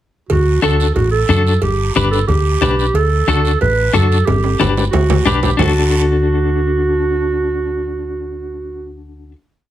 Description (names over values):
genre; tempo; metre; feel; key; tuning
latin, cumbia; 182 BPM; 4/4; straight; D major; A4 = 440 Hz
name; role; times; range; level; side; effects
warm clarinet; second line; 0.3-9.0 s; F#4 to B4; -18 LUFS; right 4 dB; none
hollow-body short-scale fingered electric bass; bass; 0.3-9.3 s; G1 to F#2; -17 LUFS; equal; none
congas; percussion; 0.3-5.7 s; none; -22 LUFS; left 2 dB; none
cowbell and timbales; percussion; 0.3-5.7 s; none; -22 LUFS; right 4 dB; none
guiro; percussion; 0.3-5.7 s; none; -29 LUFS; right 7 dB; none
clean electric guitar; accompaniment; 0.6-9.4 s; D4 to B4; -18 LUFS; left 6 dB; tremolo
room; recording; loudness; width
moderate studio reverb, RT60 0.6 s; none; -13 LUFS; side -12 dB against mid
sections
0.3-5.6 groove; 5.6-8.2 final chord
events
drum fill 4.3-5.6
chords
0.3 D; 1.6 G; 3.0 D; 4.3 G; 5.6 D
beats
| 0.30 0.63 0.96 1.29 | 1.63 1.96 2.29 2.62 | 2.95 3.28 3.61 3.94 | 4.28 4.61 4.94 5.27 | 5.60 5.93 6.26 6.59 | 6.92 7.25 7.58 7.91